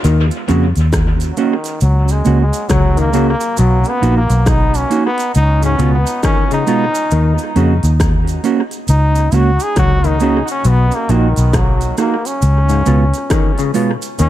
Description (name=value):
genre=roots reggae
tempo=68 BPM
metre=4/4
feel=swing 62% on 16ths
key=Eb minor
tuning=A4 = 440 Hz
part: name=overdriven clav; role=arpeggios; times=0.0-14.3 s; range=Ab2 to Gb3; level=-21 LUFS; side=left 8 dB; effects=none
part: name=fingered electric bass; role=bass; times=0.0-14.3 s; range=A#1 to F2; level=-13 LUFS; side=equal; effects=none
part: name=industrial drum kit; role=drums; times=0.0-14.3 s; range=hi-hat, kick drum, rim click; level=-19 LUFS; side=equal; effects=distortion, dub echo
part: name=cabasa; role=percussion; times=0.0-14.3 s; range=none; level=-31 LUFS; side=right 9 dB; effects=none
part: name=mellow electric guitar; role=accompaniment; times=0.5-13.9 s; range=Ab3 to Gb4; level=-20 LUFS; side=right 6 dB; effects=tape echo
part: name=brilliant trombone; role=melody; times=1.3-14.3 s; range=Eb3 to Ab4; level=-19 LUFS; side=equal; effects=tape echo
room=little or no reverb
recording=echo-heavy mix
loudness=-12 LUFS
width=side -13 dB against mid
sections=0.0-14.3 A section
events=trombone solo 0.0-14.3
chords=0.0 Ebm7; 3.6 Bmaj7; 5.3 Db7; 7.1 Ebm7; 10.7 Bmaj7; 12.4 Db7